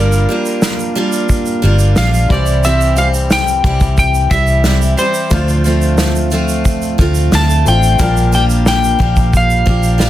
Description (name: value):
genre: acoustic pop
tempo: 90 BPM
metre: 4/4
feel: straight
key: unclear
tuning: A4 = 440 Hz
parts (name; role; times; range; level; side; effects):
- electric slide guitar; melody; 0.0-10.1 s; Bb4 to A5; -17 LUFS; left 1 dB; none
- clear upright piano; accompaniment; 0.0-10.1 s; E3 to C5; -25 LUFS; left 5 dB; none
- picked steel-string acoustic guitar; accompaniment; 0.0-10.1 s; Bb2 to G4; -18 LUFS; right 1 dB; none
- vintage muted fingered electric bass; bass; 0.0-10.1 s; G1 to D2; -13 LUFS; equal; none
- unplugged drum kit; drums; 0.1-10.1 s; kick drum, shaker, snare drum; -17 LUFS; equal; soft clipping on snare
room: light reverb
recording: dense, heavily limited modern master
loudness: -10 LUFS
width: side -13 dB against mid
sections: 0.0-10.1 A section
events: none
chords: 0.0 Gm7; 2.3 C; 5.3 Dm7; 8.0 Bb6